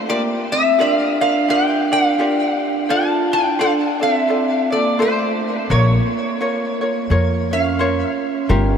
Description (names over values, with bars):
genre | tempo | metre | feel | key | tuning
Hawaiian | 86 BPM | 4/4 | swing 60% on 8ths | unclear | A4 = 440 Hz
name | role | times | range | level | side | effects
ukulele | accompaniment | 0.0-8.8 s | F4 to D5 | -22 LUFS | left 2 dB | none
metal-body resonator slide guitar | melody | 0.1-8.8 s | C5 to A5 | -19 LUFS | equal | wide subtle chorus, diffuse ambient delay
vibraphone with hard mallets | second line | 0.1-8.8 s | A3 to F4 | -21 LUFS | right 2 dB | none
upright bass | bass | 5.7-8.8 s | G1 to F2 | -17 LUFS | left 1 dB | none
room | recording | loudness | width
wet huge ambient reverb, RT60 7.8 s | dreamy mix soaked in reverb | -15 LUFS | side -7 dB against mid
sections
0.0-8.8 A section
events
none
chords
0.1 Gm7; 2.9 Dm7; 5.7 Bbmadd9